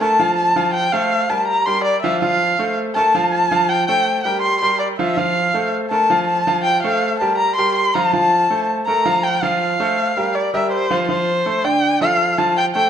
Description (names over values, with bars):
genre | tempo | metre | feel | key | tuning
latin | 162 BPM | 4/4 | straight | F major | A4 = 440 Hz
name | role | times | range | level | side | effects
dark erhu | melody | 0.0-12.9 s | C5 to C6 | -16 LUFS | left 1 dB | none
clear concert grand piano | arpeggios | 0.0-12.9 s | D3 to F5 | -20 LUFS | right 1 dB | none
room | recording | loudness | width
wet large studio reverb, RT60 1.3 s | nothing above 10.6 kHz | -15 LUFS | side -9 dB against mid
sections
0.0-11.1 A section; 11.1-12.9 B section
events
none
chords
0.0 Bb5; 0.7 Fadd9; 1.5 Bb69; 2.2 F; 3.0 Bb5; 3.7 Fadd9; 4.4 Bbsus2; 5.2 F; 5.9 Bb5; 6.7 Fadd9; 7.4 Fsus24; 8.1 F; 8.9 Bb5; 9.6 Fadd9; 10.3 C5; 11.1 F; 11.8 Dmadd11